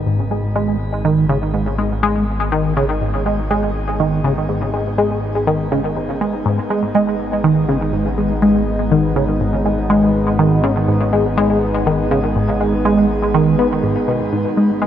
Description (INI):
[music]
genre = ambient, sequencer-driven space music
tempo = 122 BPM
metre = 4/4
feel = straight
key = G# minor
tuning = A4 = 440 Hz
[part]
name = sweeping resonant pad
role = sustained chords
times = 0.0-14.9 s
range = G#3 to D#4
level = -22 LUFS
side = right 1 dB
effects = chorus, shimmer reverb
[part]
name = fat analog bass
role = bass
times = 0.0-14.9 s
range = G#1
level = -23 LUFS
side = equal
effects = none
[part]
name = tight sequenced synth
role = riff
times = 0.1-14.9 s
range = G#2 to B3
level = -16 LUFS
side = equal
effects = chorus, phaser, tape echo, shimmer reverb
[sound]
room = moderate huge ambient reverb, RT60 9.0 s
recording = none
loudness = -14 LUFS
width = side -10 dB against mid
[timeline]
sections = 0.0-14.9 A section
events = fade-in on analog synth pad 0.0-14.9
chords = 0.0 G#m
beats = 0.06 | 0.56 1.05 1.54 2.03 | 2.52 3.02 3.51 4.00 | 4.49 4.98 5.47 5.97 | 6.46 6.95 7.44 7.93 | 8.43 8.92 9.41 9.90 | 10.39 10.88 11.38 11.87 | 12.36 12.85 13.34 13.84 | 14.33 14.82